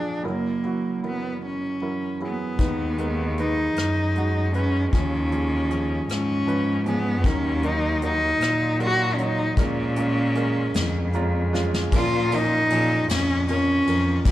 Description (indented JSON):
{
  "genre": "acoustic folk-pop ballad",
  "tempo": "51 BPM (dotted quarters)",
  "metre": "6/8",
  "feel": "straight",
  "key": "unclear",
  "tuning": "A4 = 441 Hz",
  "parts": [
    { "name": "clear cello", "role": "melody", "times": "0.0-14.3 s", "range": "Bb3 to Gb4", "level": "-24 LUFS", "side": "equal", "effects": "none" },
    { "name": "felt-muted upright piano", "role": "accompaniment", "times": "0.0-14.3 s", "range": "Gb1 to Bb5", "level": "-29 LUFS", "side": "right 2 dB", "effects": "none" },
    { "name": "rich cello", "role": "bass", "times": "2.6-14.3 s", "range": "D#2 to Bb2", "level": "-25 LUFS", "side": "equal", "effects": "none" },
    { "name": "soft brush drum kit", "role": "drums", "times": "2.6-14.3 s", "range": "hi-hat, kick drum, ride cymbal, rim click, snare drum", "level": "-26 LUFS", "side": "left 1 dB", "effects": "none" }
  ],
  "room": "light reverb",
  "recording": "none",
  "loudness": "-21 LUFS",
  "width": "side -14 dB against mid",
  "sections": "0.0-2.6 A section; 2.6-11.9 B section; 11.9-14.3 C section",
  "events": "drum fill 11.5-11.9",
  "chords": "0.2 Gb7; 2.6 B6/D#; 4.9 Db/Eb; 7.2 Ebm; 9.6 Bbm7"
}